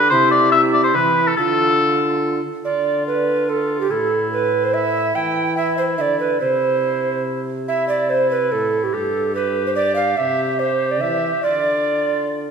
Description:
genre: classical, renaissance-style consort dance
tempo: 143 BPM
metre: 3/4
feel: straight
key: D dorian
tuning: A4 = 440 Hz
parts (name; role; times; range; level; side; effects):
- warm oboe; melody; 0.0-12.5 s; E4 to E5; -21 LUFS; left 2 dB; none
- mellow trombone; bass; 0.0-12.5 s; G2 to E3; -24 LUFS; right 1 dB; none
- mellow tenor recorder; second line; 0.1-12.3 s; E4 to G5; -19 LUFS; right 3 dB; none
room: wet recital hall reverb, RT60 1.7 s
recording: heard from further back in the room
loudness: -16 LUFS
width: side -6 dB against mid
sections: 0.0-2.6 A section; 2.6-12.5 B section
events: none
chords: 0.1 C; 1.4 Dm; 3.9 A5; 5.1 Em; 6.4 C; 8.9 Gadd9; 10.2 C; 11.4 Dm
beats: | 0.11 0.53 0.95 | 1.38 1.80 2.22 | 2.64 3.06 3.48 | 3.90 4.31 4.73 | 5.15 5.56 5.98 | 6.41 6.83 7.26 | 7.68 8.10 8.52 | 8.93 9.35 9.77 | 10.18 10.60 11.02 | 11.44 11.87 12.29

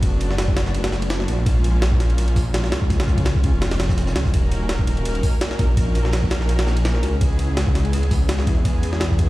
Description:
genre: drum and bass, jungle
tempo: 167 BPM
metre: 4/4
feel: swing 54% on 16ths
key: Eb minor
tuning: A4 = 440 Hz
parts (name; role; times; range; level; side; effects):
- dark studio string section; sustained chords; 0.0-9.3 s; F3 to Bb4; -28 LUFS; equal; none
- detuned saw bass; bass; 0.0-9.3 s; Eb1 to Fb2; -20 LUFS; equal; none
- crunchy breakbeat drum kit; drums; 0.0-9.3 s; hi-hat, snare drum; -38 LUFS; right 2 dB; none
- jungle sampler-style drum kit; drums; 0.0-9.3 s; hi-hat, kick drum, ride cymbal, snare drum; -21 LUFS; equal; none
room: studio reverb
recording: played on a big sound system in a bare room, large studio reverb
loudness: -17 LUFS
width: side -18 dB against mid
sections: 0.0-9.3 A section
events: none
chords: 0.0 Bm7; 1.5 Bbm7; 4.3 Ebm7; 7.2 Dbm7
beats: | 0.03 0.39 0.74 1.10 | 1.46 1.82 2.18 2.54 | 2.90 3.26 3.62 3.98 | 4.34 4.70 5.06 5.42 | 5.78 6.13 6.49 6.85 | 7.21 7.57 7.93 8.29 | 8.65 9.01

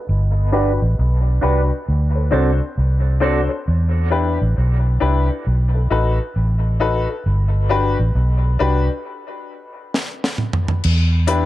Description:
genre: dub reggae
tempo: 67 BPM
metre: 4/4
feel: swing 63% on 16ths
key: E minor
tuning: A4 = 441 Hz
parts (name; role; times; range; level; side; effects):
- vintage muted fingered electric bass; bass; 0.1-11.5 s; G1 to E2; -16 LUFS; equal; none
- clean electric guitar; accompaniment; 0.5-3.5 s; C4 to D5; -26 LUFS; right 6 dB; lush chorus, low-pass filter, dub echo
- clear upright piano; stabs; 0.5-11.5 s; D4 to C5; -23 LUFS; left 5 dB; low-pass filter, dub echo
- deep reggae drum kit; drums; 9.9-11.5 s; crash cymbal, hi-hat, snare drum, toms; -21 LUFS; equal; none
room: light reverb, studio ambience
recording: dark, warm production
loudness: -16 LUFS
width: side -15 dB against mid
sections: 0.0-10.8 A section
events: filter sweep 0.0-10.8; stop 9.0-10.8; drum fill 9.9-10.8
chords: 0.1 Gmaj7; 1.9 D7; 3.7 Em7; 5.5 B7; 7.2 Gmaj7; 9.0 N.C.; 10.8 Em7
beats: | 0.08 0.97 1.87 2.77 | 3.66 4.56 5.46 6.35 | 7.25 8.14 9.04 9.94 | 10.83

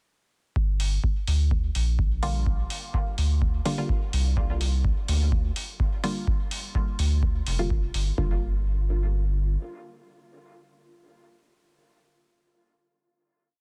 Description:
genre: dub techno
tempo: 126 BPM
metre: 4/4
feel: straight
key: G minor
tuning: A4 = 440 Hz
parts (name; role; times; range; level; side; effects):
- soft dub sub bass; bass; 0.6-9.6 s; F1 to D2; -27 LUFS; equal; tube saturation, sidechain pumping
- electronic kick drum; drums; 0.6-8.3 s; none; -28 LUFS; equal; none
- electronic hi-hat; drums; 0.8-8.0 s; none; -36 LUFS; equal; none
- filtered dub chord stab; stabs; 2.2-12.0 s; D3 to F4; -36 LUFS; equal; chorus, phaser, sidechain pumping, dub echo
room: little or no reverb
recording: dense, heavily limited modern master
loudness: -26 LUFS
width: mono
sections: 0.6-8.2 groove; 8.2-12.0 final chord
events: none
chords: 0.6 Gm7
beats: | 0.56 1.04 1.51 1.99 | 2.47 2.94 3.42 3.89 | 4.37 4.85 5.32 5.80 | 6.28 6.75 7.23 7.70 | 8.18 8.66 9.13 9.61 | 10.09 10.56 11.04 11.51

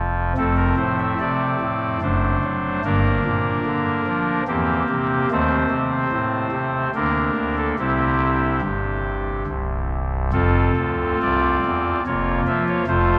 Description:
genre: classical, chorale-style piece for pipe organ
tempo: 72 BPM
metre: 3/4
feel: rubato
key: F major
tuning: A4 = 441 Hz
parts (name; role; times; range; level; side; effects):
- pipe organ, soft reed; solo; 0.0-13.2 s; C1 to E5; -21 LUFS; equal; none
room: wet cathedral reverb, RT60 6.9 s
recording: in a vast, echoing space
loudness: -21 LUFS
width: mono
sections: 0.4-13.2 A section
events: none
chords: 0.4 F; 2.0 D7/F#; 2.9 Gm7; 4.5 C7/E; 5.3 Adim/Eb; 6.9 Bb/D; 7.8 C; 10.3 F; 12.1 Bbm/F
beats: | 0.38 1.22 2.04 | 2.85 3.67 4.48 | 5.32 6.13 6.94 | 7.78 8.63 9.47 | 10.33 11.21 12.05 | 12.87

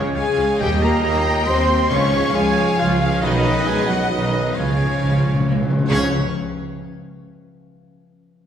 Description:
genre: cinematic, heroic adventure film score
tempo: 136 BPM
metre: 3/4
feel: straight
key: unclear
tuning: A4 = 440 Hz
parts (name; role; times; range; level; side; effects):
- mellow hollow silver concert flute; second line; 0.0-6.1 s; Db5 to Db6; -28 LUFS; right 1 dB; none
- warm oboe; second line; 0.0-6.1 s; Db5 to Db6; -29 LUFS; equal; none
- warm symphonic violin section; second line; 0.0-6.1 s; Db5 to G5; -30 LUFS; left 2 dB; none
- rich symphonic viola section; accompaniment; 0.0-6.1 s; Db3 to Ab4; -30 LUFS; right 1 dB; none
- mellow French horn section; sustained chords; 0.0-6.1 s; Db4 to Db5; -25 LUFS; left 3 dB; none
- mellow trombone section; sustained chords; 0.0-6.1 s; Gb2 to Ab3; -31 LUFS; right 2 dB; none
- concert harp; arpeggios; 0.0-7.2 s; Cb3 to Cb6; -30 LUFS; left 4 dB; none
- mellow trumpet; stabs; 0.0-6.1 s; Cb5 to Eb5; -28 LUFS; right 1 dB; none
- rich symphonic cello section; bass; 0.0-6.2 s; Db3 to Db4; -24 LUFS; right 2 dB; none
- warm tuba; bass; 0.0-6.1 s; Cb2 to Eb2; -27 LUFS; right 2 dB; none
- warm symphonic violin section; melody; 0.2-6.1 s; Db5 to Db6; -30 LUFS; left 3 dB; none
- warm symphonic double bass section; bass; 0.2-6.1 s; Cb2 to Eb2; -24 LUFS; right 2 dB; none
- timpani; percussion; 1.9-2.5, 4.6-6.1 s; Db3; -25 LUFS; left 1 dB; none
room: wet scoring stage reverb, RT60 1.8 s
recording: heard from further back in the room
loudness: -16 LUFS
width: side -8 dB against mid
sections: 0.0-5.9 A section; 5.9-7.2 B section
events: timpani fill 4.6-5.9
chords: 0.0 Db; 0.6 Eb; 1.9 Db; 3.2 Cb; 4.6 Db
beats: 0.17 | 0.60 1.04 1.48 | 1.91 2.35 2.79 | 3.23 3.67 4.11 | 4.56 5.00 5.46 | 5.90 6.34 6.78

